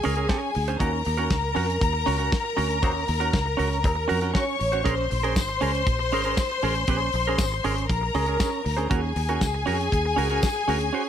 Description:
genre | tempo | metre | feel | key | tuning
disco | 118 BPM | 4/4 | straight | unclear | A4 = 442 Hz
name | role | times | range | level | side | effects
clear studio string section | second line | 0.0-11.1 s | Ab4 to Db6 | -26 LUFS | left 3 dB | none
semi-hollow electric guitar | accompaniment | 0.0-11.1 s | Db4 to C5 | -29 LUFS | right 7 dB | none
damped 70s drum kit | drums | 0.0-10.9 s | hi-hat, kick drum, snare drum | -27 LUFS | equal | none
fingered electric bass | bass | 0.1-10.9 s | Ab1 to F2 | -27 LUFS | equal | none
tambourine | percussion | 5.4-10.5 s | none | -38 LUFS | left 9 dB | none
room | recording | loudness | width
light reverb, studio reverb | none | -22 LUFS | side -9 dB against mid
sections
0.0-11.1 A section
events
none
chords
0.0 Bbm7; 0.8 Ebm7; 4.9 Bbm7; 8.9 Ebm7

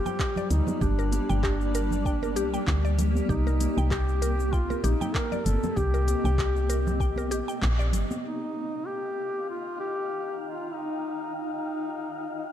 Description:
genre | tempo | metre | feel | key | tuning
organic downtempo | 97 BPM | 4/4 | swing 56% on 16ths | unclear | A4 = 440 Hz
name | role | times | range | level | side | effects
mellow duduk | melody | 0.0-12.5 s | D4 to Bb4 | -32 LUFS | left 1 dB | ping-pong delay
granular cloud pad | sustained chords | 0.0-12.5 s | G3 to Bb5 | -34 LUFS | equal | built-in reverb, sidechain pumping
mallet-like synth pluck | arpeggios | 0.0-7.9 s | G4 to G5 | -34 LUFS | left 1 dB | chorus, digital delay
afro-pop drum kit | drums | 0.1-8.2 s | cabasa, handclaps, hi-hat | -36 LUFS | equal | low-pass filter on perc, low-pass filter on hats, low-pass filter on snare, low-pass filter on room
congas | percussion | 0.1-8.2 s | none | -35 LUFS | right 2 dB | none
electronic kick drum | drums | 0.2-7.8 s | none | -29 LUFS | equal | none
woody FM bass | bass | 0.5-8.0 s | G1 to D2 | -26 LUFS | equal | none
wind-like tuned noise texture | texture | 8.9-12.5 s | F4 to F5 | -39 LUFS | left 4 dB | built-in reverb
room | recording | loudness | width
light reverb | dark, warm production | -25 LUFS | side -10 dB against mid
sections
0.0-8.2 A section; 8.2-12.5 B section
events
band accent 7.6-7.9; filter sweep on ambient pad 8.2-12.5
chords
0.0 Gm; 3.3 Cm7; 8.2 Eb

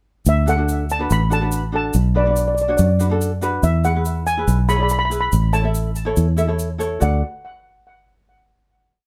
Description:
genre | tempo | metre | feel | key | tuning
calypso | 142 BPM | 4/4 | straight | D major | A4 = 440 Hz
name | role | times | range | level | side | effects
steel pan | melody | 0.3-7.2 s | D5 to B5 | -24 LUFS | equal | digital delay
fingered electric bass | bass | 0.3-7.2 s | A1 to F#2 | -21 LUFS | equal | none
tube shaker | percussion | 0.3-7.2 s | none | -36 LUFS | equal | none
ukulele | accompaniment | 0.5-7.2 s | D4 to E5 | -27 LUFS | equal | none
room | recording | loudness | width
light reverb | faint mains hum | -19 LUFS | mono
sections
0.3-7.0 verse; 7.0-8.7 final chord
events
none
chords
0.3 D; 1.9 Bm; 3.6 E; 5.3 A; 7.0 D

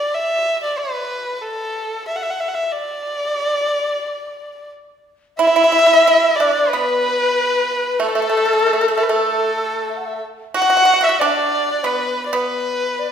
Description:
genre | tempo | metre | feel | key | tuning
chinese traditional, Chinese chamber ensemble | 92 BPM | 4/4 | rubato | D gong mode | A4 = 440 Hz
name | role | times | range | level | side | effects
warm erhu | melody | 0.0-13.1 s | A4 to F#5 | -18 LUFS | equal | none
mellow large dizi | second line | 5.4-13.1 s | A4 to F#5 | -19 LUFS | left 4 dB | none
pipa | second line | 5.4-13.1 s | A3 to F#4 | -21 LUFS | right 5 dB | none
room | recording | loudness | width
wet recital hall reverb, RT60 1.5 s | recorded in a church or concert hall | -15 LUFS | side -8 dB against mid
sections
0.0-5.4 A section; 5.4-13.1 B section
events
none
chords
none

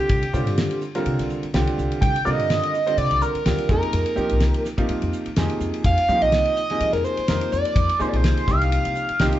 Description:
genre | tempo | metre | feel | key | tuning
electric jazz fusion | 125 BPM | 4/4 | swing 55% on 16ths | C minor | A4 = 441 Hz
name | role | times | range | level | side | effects
overdriven synth lead | melody | 0.0-9.4 s | G4 to G5 | -22 LUFS | right 1 dB | distortion, phaser
clear concert grand piano | accompaniment | 0.0-9.4 s | C3 to F5 | -26 LUFS | right 2 dB | none
upright bass | bass | 0.1-9.3 s | C2 to F3 | -24 LUFS | equal | none
damped 70s drum kit | drums | 0.1-9.4 s | hi-hat, kick drum, ride cymbal, snare drum | -25 LUFS | left 1 dB | none
room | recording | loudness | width
moderate large studio reverb, RT60 0.9 s | band playing live in one room, nothing above 7.9 kHz | -19 LUFS | side -13 dB against mid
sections
0.0-9.4 A section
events
grand piano fill 1.3-2.0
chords
0.0 C9sus4; 3.7 Fm11; 8.5 Cm7

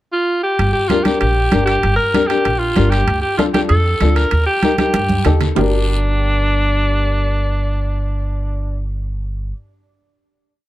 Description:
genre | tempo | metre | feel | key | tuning
latin, cumbia | 193 BPM | 4/4 | straight | G minor | A4 = 438 Hz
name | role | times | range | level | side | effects
bright alto saxophone | melody | 0.1-8.8 s | D4 to Bb4 | -18 LUFS | equal | none
upright bass | bass | 0.6-9.5 s | G1 to G2 | -17 LUFS | equal | none
guiro | percussion | 0.6-5.6 s | none | -32 LUFS | left 3 dB | none
timbales | percussion | 0.6-5.6 s | none | -24 LUFS | right 8 dB | none
dark upright piano | accompaniment | 0.9-9.5 s | D4 to Bb4 | -20 LUFS | left 5 dB | none
congas | percussion | 0.9-5.6 s | none | -20 LUFS | right 2 dB | none
room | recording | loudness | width
light reverb | dark, warm production | -14 LUFS | side -15 dB against mid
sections
0.0-0.6 pickup bar; 0.6-5.6 A section; 5.6-8.0 final chord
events
drum fill 4.8-5.6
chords
0.0 N.C.; 0.6 Gm; 3.1 Dm; 4.3 Eb; 5.6 Gm

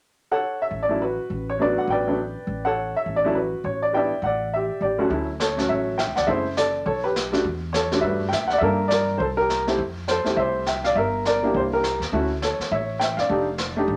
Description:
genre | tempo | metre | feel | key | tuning
jazz piano trio | 205 BPM | 4/4 | swing 61% on 8ths | D major | A4 = 440 Hz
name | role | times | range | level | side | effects
clear upright piano | melody | 0.3-14.0 s | D2 to G5 | -24 LUFS | equal | none
upright bass | bass | 0.7-14.0 s | F1 to G2 | -33 LUFS | equal | none
vintage brush drum kit | drums | 5.1-14.0 s | brushed snare drum, hi-hat, kick drum, snare drum | -33 LUFS | equal | none
room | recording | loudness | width
wet studio reverb, RT60 0.6 s | none | -23 LUFS | mono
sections
0.4-5.1 A section; 5.1-14.0 B section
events
none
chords
0.4 A69; 5.1 Dmaj9; 6.3 F#m7b5; 6.9 B5; 7.4 Em11; 8.6 Gm9; 9.2 C5; 9.8 Fmaj9; 11.0 Gm; 11.5 C9; 12.1 Dmaj7sus2; 13.3 F13

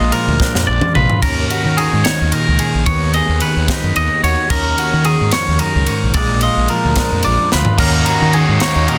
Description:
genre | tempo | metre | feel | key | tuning
math rock and midwest emo | 73 BPM (dotted quarters) | 6/8 | straight | Eb minor | A4 = 440 Hz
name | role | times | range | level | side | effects
clean electric guitar | accompaniment | 0.0-9.0 s | Eb2 to Ab4 | -22 LUFS | equal | none
twangy electric guitar | arpeggios | 0.0-9.0 s | Ab4 to Eb5 | -20 LUFS | equal | phaser, tape echo
fuzz fingered electric bass | bass | 0.0-8.9 s | Bb1 to Eb3 | -20 LUFS | equal | overdrive
crisp fusion drum kit | drums | 0.1-9.0 s | crash cymbal, kick drum, ride cymbal, snare drum, toms | -21 LUFS | equal | none
biting overdriven guitar | riff | 7.8-9.0 s | Eb3 to Eb4 | -21 LUFS | equal | none
room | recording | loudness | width
little or no reverb | dense, heavily limited modern master | -15 LUFS | mono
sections
0.0-7.8 A section; 7.8-9.0 B section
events
drum fill 0.4-1.2, 7.5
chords
0.0 Bb7; 1.2 Ebm7; 2.9 B/D#; 4.5 Ebm7; 6.2 Bb7; 7.8 Ebm7

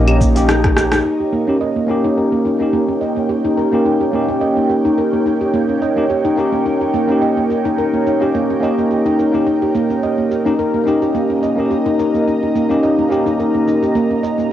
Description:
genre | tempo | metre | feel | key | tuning
organic downtempo | 107 BPM | 4/4 | swing 54% on 16ths | unclear | A4 = 439 Hz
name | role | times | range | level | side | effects
tine electric piano | accompaniment | 0.0-14.5 s | Bb3 to G4 | -18 LUFS | left 2 dB | medium stereo tremolo, vintage 12-bit sampler grit, sidechain pumping, cassette tape, analog delay
ethereal airy pad | sustained chords | 0.0-14.5 s | Eb4 to Bb5 | -22 LUFS | right 2 dB | ensemble chorus, built-in reverb, phaser, sidechain pumping, cassette tape, plate reverb
woody FM bass | bass | 0.0-1.0 s | Bb1 | -16 LUFS | equal | none
handpan | arpeggios | 0.1-14.5 s | Bb3 to Eb5 | -17 LUFS | right 1 dB | low-pass filter, cassette tape, analog delay
organic electronic drum kit | drums | 0.1-14.5 s | claves, hi-hat, rim click, shaker | -19 LUFS | equal | low-pass filter on snare, cassette tape, low-pass filter on hats, low-pass filter on perc, low-pass filter on room
electronic kick drum | drums | 0.2-0.7 s | none | -18 LUFS | equal | cassette tape
room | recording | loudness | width
moderate studio reverb, RT60 0.6 s | home recording on cassette | -14 LUFS | side -11 dB against mid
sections
0.0-1.1 A section; 1.1-14.5 B section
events
drum fill 0.6-1.1; band accent 0.9; filter sweep on ambient pad 1.1-14.5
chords
0.0 Eb7

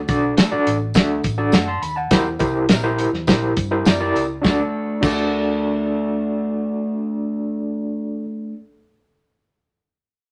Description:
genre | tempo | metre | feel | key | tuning
uptempo 1960s-style soul | 103 BPM | 4/4 | straight | D mixolydian | A4 = 437 Hz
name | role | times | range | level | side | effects
vintage muted fingered electric bass | bass | 0.0-8.2 s | A1 to G2 | -30 LUFS | equal | tube saturation
overdriven tine electric piano | accompaniment | 0.1-8.2 s | D4 to C6 | -24 LUFS | equal | medium tremolo
warm soul drum kit | drums | 0.1-5.2 s | crash cymbal, hi-hat, kick drum, snare drum | -20 LUFS | equal | none
tambourine | percussion | 0.1-5.2 s | none | -40 LUFS | equal | none
electric guitar through a small old amp | stabs | 0.4-8.6 s | G3 to Bb4 | -27 LUFS | equal | spring reverb
room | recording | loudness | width
wet studio reverb, RT60 0.5 s | none | -20 LUFS | mono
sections
0.0-4.4 A section; 4.4-6.8 B section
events
tine electric piano fill 3.6-4.4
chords
0.0 D; 2.1 C7; 4.4 D

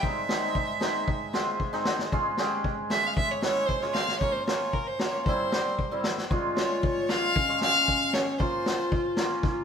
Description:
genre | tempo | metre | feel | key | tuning
klezmer | 115 BPM | 4/4 | straight | unclear | A4 = 441 Hz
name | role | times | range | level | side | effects
clear violin | melody | 0.0-9.2 s | Bb4 to F5 | -28 LUFS | equal | none
hammered dulcimer | accompaniment | 0.0-9.5 s | G3 to Ab4 | -30 LUFS | equal | none
street-band drum kit | drums | 0.0-9.6 s | kick drum, snare drum | -30 LUFS | left 1 dB | none
breathy clarinet | second line | 6.3-9.6 s | Db4 to F4 | -30 LUFS | left 2 dB | none
room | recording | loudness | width
moderate stone room reverb, RT60 1.5 s | band playing live in one room | -24 LUFS | side -7 dB against mid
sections
0.0-6.3 A section; 6.3-9.6 B section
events
none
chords
0.0 Ab; 2.1 Db; 4.2 Bbm; 5.3 C; 6.3 Db; 8.4 Bbm

